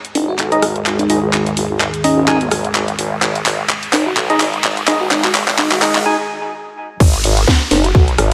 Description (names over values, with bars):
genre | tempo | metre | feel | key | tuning
bass house | 127 BPM | 4/4 | swing 56% on 16ths | G# minor | A4 = 440 Hz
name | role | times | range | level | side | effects
dark analog pad | sustained chords | 0.3-8.3 s | D#3 to G#4 | -28 LUFS | equal | chorus, sidechain pumping
garage drum kit | drums | 0.0-8.3 s | crash cymbal, handclaps, hi-hat, rim click, snare drum | -20 LUFS | equal | none
riser and downlifter | sound effects | 2.0-8.3 s | none | -28 LUFS | equal | none
bell-like FM electric piano | melody | 0.2-8.0 s | C#4 to F#4 | -23 LUFS | equal | chorus, tremolo, dub echo
vowel-sweep wobble bass | bass | 0.2-8.3 s | F#1 to B1 | -21 LUFS | equal | chorus, tube saturation, sidechain pumping, high-pass filter
percussive organ stab | stabs | 0.5-6.2 s | D#4 to G#5 | -22 LUFS | equal | chorus, cassette tape, sidechain pumping, dub echo
electronic kick drum | drums | 7.0-8.1 s | none | -13 LUFS | equal | none
room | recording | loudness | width
moderate lush hall reverb, RT60 1.9 s, digital ambience | high-pass filter | -15 LUFS | mono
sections
0.0-7.0 A section; 7.0-8.3 B section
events
build-up 0.0-7.0; drum fill 0.0-6.1; filter sweep on synth stab 0.0-7.0; break 6.1-7.0; drop 7.0-8.3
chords
0.0 G#5